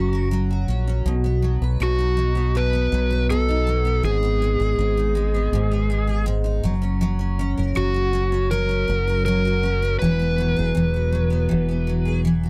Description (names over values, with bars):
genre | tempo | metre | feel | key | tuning
acoustic pop | 80 BPM | 4/4 | straight | unclear | A4 = 441 Hz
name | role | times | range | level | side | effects
overdriven slide guitar | melody | 0.0-12.2 s | F#4 to B4 | -26 LUFS | equal | none
picked steel-string acoustic guitar | accompaniment | 0.0-12.5 s | G#2 to B4 | -26 LUFS | equal | double-tracked
fingered electric bass | bass | 0.0-12.5 s | E1 to B1 | -24 LUFS | equal | none
room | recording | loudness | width
light reverb | dry, close 1970s-style studio recording | -21 LUFS | mono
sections
0.0-12.5 A section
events
none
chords
0.0 F#; 1.1 B; 4.0 G#m; 6.7 F#; 10.0 Eadd9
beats
0.31 | 1.05 1.80 2.54 3.29 | 4.04 4.78 5.53 6.28 | 7.02 7.77 8.52 9.27 | 10.01 10.76 11.51 12.26